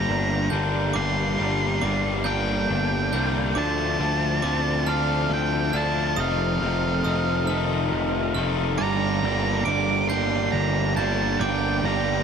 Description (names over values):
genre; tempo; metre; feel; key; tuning
post-rock; 46 BPM (dotted quarters); 6/8; straight; G minor; A4 = 438 Hz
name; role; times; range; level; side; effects
octave-fuzz lead guitar; melody; 0.0-12.2 s; F5 to D6; -28 LUFS; right 4 dB; distortion, analog delay
bright symphonic string section; sustained chords; 0.0-12.2 s; D4 to G5; -35 LUFS; right 5 dB; none
glockenspiel with brass mallets; arpeggios; 0.0-12.2 s; D6 to G6; -35 LUFS; right 9 dB; analog delay
twelve-string electric guitar; arpeggios; 0.0-12.2 s; F2 to A4; -32 LUFS; right 3 dB; spring reverb, analog delay
crunchy overdriven guitar; riff; 0.0-12.2 s; F2 to Eb4; -26 LUFS; left 6 dB; none
fuzz picked electric bass; bass; 0.0-12.2 s; F1 to D2; -26 LUFS; right 1 dB; overdrive
raw garage guitar; riff; 8.8-12.2 s; G2 to D4; -28 LUFS; right 15 dB; overdrive
room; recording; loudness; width
light reverb, digital ambience; none; -21 LUFS; side -7 dB against mid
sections
0.0-12.2 A section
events
none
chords
0.0 Gm; 3.6 Dm7; 6.2 F7; 8.8 Gm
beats
| 0.94 2.25 | 3.56 4.87 | 6.17 7.48 | 8.79 10.10 | 11.40